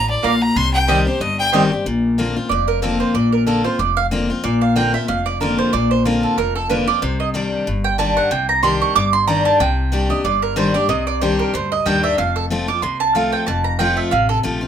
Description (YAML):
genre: bluegrass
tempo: 186 BPM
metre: 4/4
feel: swing 55% on 8ths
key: unclear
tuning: A4 = 440 Hz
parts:
  - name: clear fiddle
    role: melody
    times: 0.0-1.5 s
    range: C5 to C6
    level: -19 LUFS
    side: left 1 dB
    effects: none
  - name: picked steel-string acoustic guitar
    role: accompaniment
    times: 0.0-14.7 s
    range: F2 to G4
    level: -19 LUFS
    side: left 3 dB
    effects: none
  - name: upright bass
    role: bass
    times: 0.0-14.7 s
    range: F1 to Eb2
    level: -24 LUFS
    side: equal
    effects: none
  - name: mandolin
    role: stabs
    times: 0.2-14.4 s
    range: Bb3 to D6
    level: -19 LUFS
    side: right 6 dB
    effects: none
room: moderate studio ambience, RT60 0.5 s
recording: minimal, uncompressed stereo recording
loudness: -15 LUFS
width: side -8 dB against mid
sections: 0.0-1.9 A section; 1.9-12.2 B section; 12.2-14.7 B section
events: mandolin solo 1.9-14.7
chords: 0.0 Bb; 0.6 Cm; 1.9 Bbadd9; 7.0 Cmadd9; 12.2 F